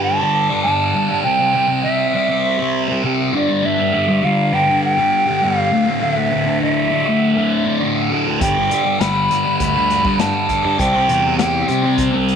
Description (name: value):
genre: psychedelic rock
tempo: 101 BPM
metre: 4/4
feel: straight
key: unclear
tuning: A4 = 440 Hz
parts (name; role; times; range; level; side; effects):
- hollow concert flute; melody; 0.0-11.9 s; D5 to B5; -18 LUFS; right 1 dB; tape echo
- thick fuzz guitar; riff; 0.0-12.4 s; D2 to C4; -17 LUFS; equal; distortion, phaser
- fuzz fingered electric bass; bass; 8.4-12.4 s; G1 to C3; -23 LUFS; equal; overdrive
- vintage drum kit; drums; 8.4-12.4 s; hi-hat, kick drum, snare drum; -24 LUFS; left 4 dB; none
room: moderate spring reverb, RT60 1.8 s, small room ambience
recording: 1960s-style stereo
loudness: -14 LUFS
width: side -7 dB against mid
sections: 0.0-12.4 A section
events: none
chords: 0.0 G5; 1.2 C; 3.3 G5; 5.7 D5; 8.4 G; 10.8 C